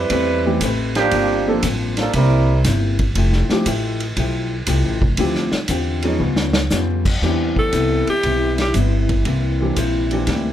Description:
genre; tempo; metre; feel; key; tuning
jazz, big band swing; 118 BPM; 4/4; swing 68% on 8ths; C major; A4 = 442 Hz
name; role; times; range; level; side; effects
clear trombone section; second line; 0.0-2.6 s; F3 to B4; -19 LUFS; right 3 dB; none
upright bass; bass; 0.0-10.5 s; F1 to F2; -20 LUFS; equal; none
vintage hollow-body jazz guitar; accompaniment; 0.1-10.5 s; G2 to B4; -24 LUFS; left 4 dB; none
vintage drum kit; drums; 0.1-10.4 s; crash cymbal, hi-hat, kick drum, ride cymbal, snare drum; -23 LUFS; equal; none
dark baby grand piano; accompaniment; 0.5-10.5 s; E3 to A4; -23 LUFS; equal; none
warm trombone section; sustained chords; 7.2-10.5 s; E3 to E4; -27 LUFS; right 1 dB; none
bright alto saxophone; melody; 7.6-8.7 s; G4 to A4; -20 LUFS; left 1 dB; none
room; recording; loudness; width
moderate club reverb, RT60 0.7 s; none; -16 LUFS; side -11 dB against mid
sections
0.0-7.2 A section; 7.2-10.5 B section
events
trombone section solo 0.0-7.2; drum fill 6.2-6.7; alto saxophone solo 7.2-10.5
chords
0.0 Am9; 1.1 Gm11; 2.1 C7; 3.2 Fmaj9; 5.2 Dm11; 6.2 Db7#11; 7.2 Cmaj7; 9.3 C7

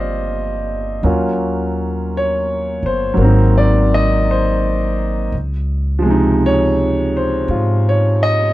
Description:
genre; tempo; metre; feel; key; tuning
jazz ballad; 56 BPM; 4/4; swing 67% on 8ths; unclear; A4 = 441 Hz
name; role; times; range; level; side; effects
clear grand piano; accompaniment; 0.0-8.5 s; C3 to F5; -16 LUFS; equal; none
upright bass; bass; 0.0-8.5 s; G1 to Ab2; -18 LUFS; equal; none
room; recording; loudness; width
little or no reverb; dry, close 1970s-style studio recording; -14 LUFS; side -16 dB against mid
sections
0.0-8.5 A section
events
none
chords
0.0 Cm11; 1.0 Ebm9; 3.2 Ab7; 5.3 Dbmaj7

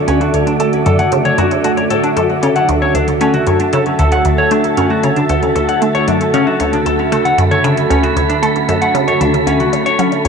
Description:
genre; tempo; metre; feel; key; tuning
ambient, sequencer-driven space music; 115 BPM; 4/4; straight; D major; A4 = 440 Hz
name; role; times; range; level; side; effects
sweeping resonant pad; sustained chords; 0.0-10.3 s; D3 to E5; -16 LUFS; right 1 dB; chorus
wind-like tuned noise texture; texture; 0.0-10.3 s; A4 to B5; -21 LUFS; right 3 dB; built-in reverb
clean electric guitar; arpeggios; 0.1-10.3 s; C#4 to F#5; -16 LUFS; moving between left 7 dB and right 2 dB; auto-pan, tape echo
resonant blip pluck; riff; 0.1-10.3 s; D2 to A3; -16 LUFS; equal; phaser, cassette tape, tape echo
soft vintage rhythm box; percussion; 0.1-10.3 s; hi-hat, toms; -26 LUFS; left 4 dB; tape echo
room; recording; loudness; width
wet plate reverb, RT60 2.6 s; cassette tape; -11 LUFS; side -6 dB against mid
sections
0.0-10.3 A section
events
none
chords
0.0 Dmaj7

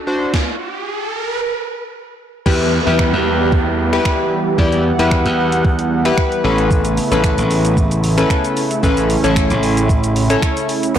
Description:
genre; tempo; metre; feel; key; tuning
dance-pop; 113 BPM; 4/4; straight; E minor; A4 = 435 Hz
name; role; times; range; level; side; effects
riser and downlifter; sound effects; 0.0-6.7 s; none; -24 LUFS; right 2 dB; none
chorused retro synth keys; accompaniment; 0.1-11.0 s; C#4 to D5; -18 LUFS; left 4 dB; sidechain pumping
gated 80s digital drum machine; drums; 0.3-11.0 s; crash cymbal, finger snaps, hi-hat, kick drum, shaker, snare drum; -19 LUFS; right 1 dB; gated reverb, gated reverb snare, overdrive, soft clipping on snare
warm analog pad; sustained chords; 2.8-11.0 s; C#3 to F#5; -20 LUFS; right 3 dB; chorus, sidechain pumping
glassy slap bass; bass; 2.5-11.0 s; A1 to E2; -17 LUFS; right 1 dB; sidechain pumping
direct-recorded clean electric guitar; riff; 11.0 s; B3; -14 LUFS; right 8 dB; lush chorus
egg shaker; percussion; 11.0 s; none; -29 LUFS; right 18 dB; none
room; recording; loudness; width
light reverb, digital ambience; blown-out, overdriven recording, overdrive; -14 LUFS; side -10 dB against mid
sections
0.0-2.5 A section; 2.5-11.0 B section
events
riser 0.0-2.5; stop 0.3-2.5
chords
0.0 D; 2.5 Em; 6.4 Aadd9

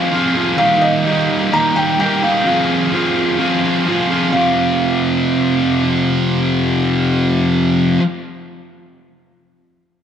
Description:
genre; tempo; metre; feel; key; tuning
rock; 129 BPM; 4/4; straight; F minor; A4 = 440 Hz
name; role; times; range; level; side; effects
thick fuzz guitar; riff; 0.0-8.0 s; F2 to Ab4; -14 LUFS; equal; distortion, slapback echo
felt-muted upright piano; melody; 0.6-7.9 s; Eb5 to Bb5; -19 LUFS; equal; none
room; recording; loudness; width
moderate lush hall reverb, RT60 2.5 s; big arena sound; -13 LUFS; side -8 dB against mid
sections
0.0-4.3 A section; 4.3-8.1 B section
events
none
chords
0.0 Fm; 0.6 Eb; 2.5 Fm; 4.3 F5

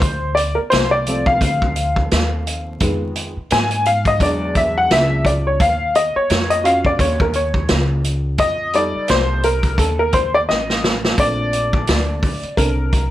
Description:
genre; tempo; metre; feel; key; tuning
hip hop, jazz-hop; 86 BPM; 4/4; swing 58% on 16ths; Bb major; A4 = 439 Hz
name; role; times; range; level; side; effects
warm upright piano; accompaniment; 0.0-13.1 s; Eb3 to Ab5; -18 LUFS; left 1 dB; plate reverb
upright bass; bass; 0.0-13.1 s; A1 to Ab2; -22 LUFS; equal; none
vintage drum kit; drums; 0.0-13.1 s; hi-hat, kick drum, snare drum; -20 LUFS; equal; none
room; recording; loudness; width
light reverb; vinyl crackle; -15 LUFS; side -14 dB against mid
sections
0.0-11.2 A section; 11.2-13.1 B section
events
upright piano solo 0.0-11.2, 11.2-13.1; drum fill 10.5-11.2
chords
0.0 Dm7; 2.8 Fm7b5; 4.2 E9; 5.6 Ebm9; 8.4 F7; 11.2 Bbmaj9

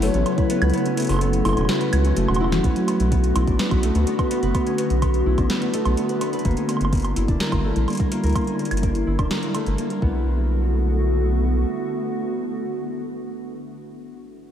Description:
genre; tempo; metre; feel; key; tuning
IDM; 126 BPM; 4/4; straight; B minor; A4 = 440 Hz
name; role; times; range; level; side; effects
warbly nostalgic lead; melody; 0.0-2.1 s; A4 to C#5; -31 LUFS; left 1 dB; analog chorus, tape echo
glassy FM pad; sustained chords; 0.0-13.8 s; C#3 to F#4; -25 LUFS; equal; ensemble chorus, built-in reverb
concert harp; arpeggios; 0.0-13.1 s; F#3 to B4; -27 LUFS; equal; low-pass filter, ping-pong delay
round analog bass; bass; 0.0-11.6 s; E1 to D2; -21 LUFS; equal; none
booming analog drum machine; drums; 0.0-10.0 s; hi-hat, snare drum, toms, woodblock; -29 LUFS; right 1 dB; analog delay
electronic kick drum; drums; 0.4-10.1 s; none; -23 LUFS; equal; none
room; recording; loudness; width
wet cathedral reverb, RT60 5.4 s; dreamy mix soaked in reverb, faint mains hum; -19 LUFS; side -10 dB against mid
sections
0.0-2.6 A section; 2.6-10.3 B section; 10.3-14.1 C section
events
kick drops out 0.7-2.6; drum fill 2.4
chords
0.0 F#m7; 2.6 Bm7; 6.5 Gm6; 10.0 Bm7

